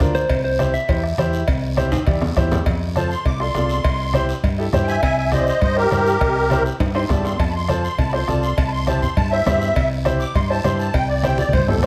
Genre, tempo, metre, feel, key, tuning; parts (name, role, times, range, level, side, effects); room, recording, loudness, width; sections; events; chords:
latin, cumbia; 203 BPM; 4/4; straight; A4 = 440 Hz
mellow electric guitar; second line; 0.0-2.3 s; C5 to E5; -25 LUFS; equal
bright upright piano; accompaniment; 0.0-11.9 s; D4 to D5; -26 LUFS; equal
fingered electric bass; bass; 0.0-11.9 s; C2 to G2; -25 LUFS; equal
bombo; percussion; 0.0-11.9 s; -26 LUFS; equal
congas; percussion; 0.0-11.8 s; -28 LUFS; equal
guiro; percussion; 0.0-11.9 s; -40 LUFS; equal
cowbell and timbales; percussion; 0.3-11.9 s; -30 LUFS; equal
musette accordion; melody; 3.0-11.9 s; G4 to D6; -24 LUFS; equal
moderate large studio reverb, RT60 1.3 s; -19 LUFS; mono
0.0-2.7 A section; 2.7-11.9 B section
clean electric guitar solo 0.0-2.7; drum fill 1.9-2.7, 6.8-7.4, 11.4-11.9; accordion solo 2.7-11.9
0.3 C; 2.7 F; 3.8 C7; 7.4 F; 8.6 C